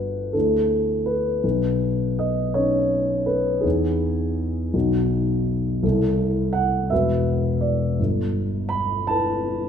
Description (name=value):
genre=classical, impressionist solo piano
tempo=55 BPM (dotted quarters)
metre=6/8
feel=rubato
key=unclear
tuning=A4 = 440 Hz
part: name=warm concert grand piano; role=solo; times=0.0-9.7 s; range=E1 to B5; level=-20 LUFS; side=equal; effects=none
room=wet recital hall reverb, RT60 1.6 s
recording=minimal, uncompressed stereo recording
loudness=-20 LUFS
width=side -8 dB against mid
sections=0.0-9.7 A section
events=none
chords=0.3 Dsus2; 1.4 Badd9; 3.6 Emaj7; 4.7 B; 5.8 C6; 6.9 Esus2; 8.0 G69